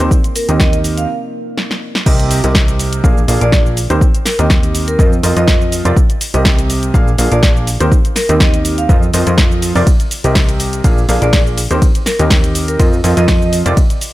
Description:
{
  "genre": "piano house",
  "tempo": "123 BPM",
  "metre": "4/4",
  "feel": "swing 54% on 16ths",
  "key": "unclear",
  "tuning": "A4 = 440 Hz",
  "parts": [
    { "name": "warm concert grand piano", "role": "riff", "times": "0.0-13.8 s", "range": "Bb2 to F5", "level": "-17 LUFS", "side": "right 1 dB", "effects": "sidechain pumping" },
    { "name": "plucky analog bass", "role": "bass", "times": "0.0-13.7 s", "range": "Bb1 to F2", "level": "-16 LUFS", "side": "equal", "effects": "sidechain pumping" },
    { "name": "punchy analog drum machine", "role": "drums", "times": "0.0-14.1 s", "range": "crash cymbal, hi-hat, ride cymbal, shaker, snare drum", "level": "-19 LUFS", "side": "equal", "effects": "none" },
    { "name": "deep dark ambient pad", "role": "texture", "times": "0.0-1.1 s", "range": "C4 to Bb4", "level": "-28 LUFS", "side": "right 2 dB", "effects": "chorus, built-in reverb, sidechain pumping" },
    { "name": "electronic kick drum", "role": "drums", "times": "0.1-13.9 s", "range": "none", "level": "-12 LUFS", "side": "equal", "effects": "none" },
    { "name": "vibraphone with medium hard mallets", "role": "melody", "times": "0.4-13.5 s", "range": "Bb4 to F5", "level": "-21 LUFS", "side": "right 1 dB", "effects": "tape echo" }
  ],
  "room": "little or no reverb",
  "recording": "none",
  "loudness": "-10 LUFS",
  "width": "side -16 dB against mid",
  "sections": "0.0-2.1 A section; 2.1-14.1 B section",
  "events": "break 1.1-2.1; drum fill 1.6-2.1; drop 2.1-14.1",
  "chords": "0.0 Eb6; 1.1 N.C.; 2.1 Cm7; 3.0 Bb7; 3.8 Eb6; 5.0 F7sus4; 6.0 Cm7; 6.9 Bb7; 7.7 Eb6; 8.9 F7sus4; 9.9 Cm7; 10.8 Bb7; 11.6 Eb6; 12.8 F7sus4",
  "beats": "| 0.11 0.60 1.09 1.57 | 2.06 2.55 3.04 3.53 | 4.01 4.50 4.99 5.48 | 5.96 6.45 6.94 7.43 | 7.92 8.40 8.89 9.38 | 9.87 10.36 10.84 11.33 | 11.82 12.31 12.79 13.28 | 13.77"
}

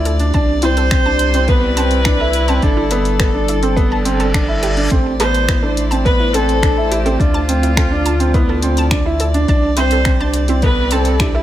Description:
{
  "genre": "piano and strings electronica",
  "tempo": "105 BPM",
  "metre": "4/4",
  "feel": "straight",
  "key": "unclear",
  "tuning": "A4 = 439 Hz",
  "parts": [
    { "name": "warm string quartet", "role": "sustained chords", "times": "0.0-11.4 s", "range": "C3 to D5", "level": "-25 LUFS", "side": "left 1 dB", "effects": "sidechain pumping" },
    { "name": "clear upright piano", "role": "riff", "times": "0.0-11.4 s", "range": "B3 to E4", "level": "-19 LUFS", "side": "right 3 dB", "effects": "none" },
    { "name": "round analog bass", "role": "bass", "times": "0.0-11.4 s", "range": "G1 to D2", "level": "-18 LUFS", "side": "equal", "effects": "sidechain pumping" },
    { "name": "analog pluck", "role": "arpeggios", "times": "0.1-11.4 s", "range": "E4 to A5", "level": "-26 LUFS", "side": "right 1 dB", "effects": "chorus, sidechain pumping, digital delay" },
    { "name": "deep house drum kit", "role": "drums", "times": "0.1-11.3 s", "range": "finger snaps, hi-hat", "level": "-23 LUFS", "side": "left 1 dB", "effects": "none" },
    { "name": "electronic kick drum", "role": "drums", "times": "0.3-11.3 s", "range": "none", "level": "-17 LUFS", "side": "equal", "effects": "none" },
    { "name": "rich viola", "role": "melody", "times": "0.6-11.4 s", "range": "F4 to C5", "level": "-20 LUFS", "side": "left 1 dB", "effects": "none" },
    { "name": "reverse cymbal", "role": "sound effects", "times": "4.0-4.9 s", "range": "none", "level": "-26 LUFS", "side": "left 2 dB", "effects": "none" }
  ],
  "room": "light reverb, digital ambience",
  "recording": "none",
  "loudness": "-12 LUFS",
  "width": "side -12 dB against mid",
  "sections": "0.0-11.4 A section",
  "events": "reverse cymbal 4.0-4.9",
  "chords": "0.3 Cadd9; 2.6 Gadd9; 4.9 Amadd9; 7.2 Dm; 9.5 Cadd9",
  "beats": "| 0.34 0.91 1.49 2.06 | 2.63 3.20 3.77 4.34 | 4.91 5.49 6.06 6.63 | 7.20 7.77 8.34 8.91 | 9.49 10.06 10.63 11.20"
}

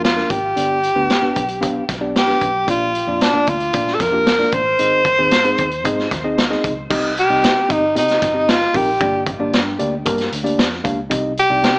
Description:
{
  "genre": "uptempo 1960s-style soul",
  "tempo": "114 BPM",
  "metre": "4/4",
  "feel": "straight",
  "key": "C minor",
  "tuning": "A4 = 437 Hz",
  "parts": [
    { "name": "breathy tenor saxophone", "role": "melody", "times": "0.0-11.8 s", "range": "D4 to C5", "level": "-16 LUFS", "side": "equal", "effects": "tape echo" },
    { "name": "tine electric piano", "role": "accompaniment", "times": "0.0-11.8 s", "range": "G2 to F5", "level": "-22 LUFS", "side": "equal", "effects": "overdrive, fast stereo tremolo" },
    { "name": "vintage muted picked electric bass", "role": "bass", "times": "0.0-11.8 s", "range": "G1 to C3", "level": "-30 LUFS", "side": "equal", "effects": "none" },
    { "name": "raw garage drum kit", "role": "drums", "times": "0.0-11.8 s", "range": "crash cymbal, hi-hat, kick drum, snare drum", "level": "-19 LUFS", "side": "equal", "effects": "none" }
  ],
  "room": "light reverb, studio reverb",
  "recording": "small speaker sound",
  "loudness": "-14 LUFS",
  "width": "side -30 dB against mid",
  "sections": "0.0-6.9 A section; 6.9-11.8 B section",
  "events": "none",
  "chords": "0.0 Bb; 0.6 G; 2.7 Bb; 4.8 Ab; 6.9 Cm; 9.0 Gm; 11.1 Cm",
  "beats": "0.04 | 0.57 1.09 1.62 2.15 | 2.68 3.21 3.74 4.27 | 4.79 5.32 5.85 6.38 | 6.90 7.43 7.96 8.48 | 9.01 9.54 10.06 10.59 | 11.11 11.64"
}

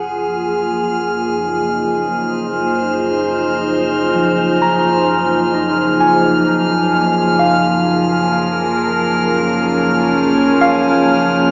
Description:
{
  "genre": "ambient",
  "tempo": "65 BPM",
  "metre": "4/4",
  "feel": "straight",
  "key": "unclear",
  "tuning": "A4 = 440 Hz",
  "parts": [
    { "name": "evolving wavetable pad", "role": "sustained chords", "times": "0.0-11.5 s", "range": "F3 to C5", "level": "-15 LUFS", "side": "equal", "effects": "chorus, built-in reverb" },
    { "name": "overdriven tine electric piano", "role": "arpeggios", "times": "0.0-11.5 s", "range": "F3 to Bb5", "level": "-18 LUFS", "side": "equal", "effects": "tape echo" },
    { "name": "muted studio double bass section", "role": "bass", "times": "0.0-11.5 s", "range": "Gb1", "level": "-28 LUFS", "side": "equal", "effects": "tube saturation" },
    { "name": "drifting glass-harmonics texture", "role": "texture", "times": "0.1-11.5 s", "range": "F6", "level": "-21 LUFS", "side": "equal", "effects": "chorus, built-in reverb" }
  ],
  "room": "wet concert hall reverb, RT60 2.1 s",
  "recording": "cassette tape, small speaker sound",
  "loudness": "-12 LUFS",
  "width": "side -30 dB against mid",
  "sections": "0.0-11.5 A section",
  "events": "filter sweep on ambient pad 0.0-11.5",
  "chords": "0.0 Dbadd9/Gb",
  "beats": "0.46 1.38 2.31 | 3.23 4.15 5.08 6.00 | 6.92 7.84 8.77 9.69 | 10.62"
}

